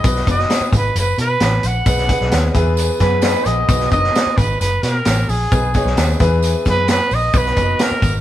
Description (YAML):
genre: uptempo 1960s-style soul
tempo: 132 BPM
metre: 4/4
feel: straight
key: B major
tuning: A4 = 440 Hz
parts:
  - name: warm trumpet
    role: melody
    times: 0.0-8.2 s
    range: G#4 to F#5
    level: -19 LUFS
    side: right 1 dB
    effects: none
  - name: bright upright piano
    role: accompaniment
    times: 0.0-8.2 s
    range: B2 to D#5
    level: -22 LUFS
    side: left 1 dB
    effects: none
  - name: electric guitar through a small old amp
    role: riff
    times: 0.0, 3.0-3.9 s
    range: B3 to B4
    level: -25 LUFS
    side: left 2 dB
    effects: spring reverb
  - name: vintage muted picked electric bass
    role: bass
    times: 0.0-8.2 s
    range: F#1 to B2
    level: -19 LUFS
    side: equal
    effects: none
  - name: vintage drum kit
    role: drums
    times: 0.0-8.1 s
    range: hi-hat, kick drum, snare drum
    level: -18 LUFS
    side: equal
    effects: none
  - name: tambourine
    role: percussion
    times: 0.0-8.1 s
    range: none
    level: -31 LUFS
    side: right 5 dB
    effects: none
room: light reverb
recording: band playing live in one room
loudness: -14 LUFS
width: side -12 dB against mid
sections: 0.0-8.2 A section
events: none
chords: 0.0 B; 1.9 G#m/B; 2.5 E; 3.7 B; 5.5 G#m/B; 6.2 E; 7.3 B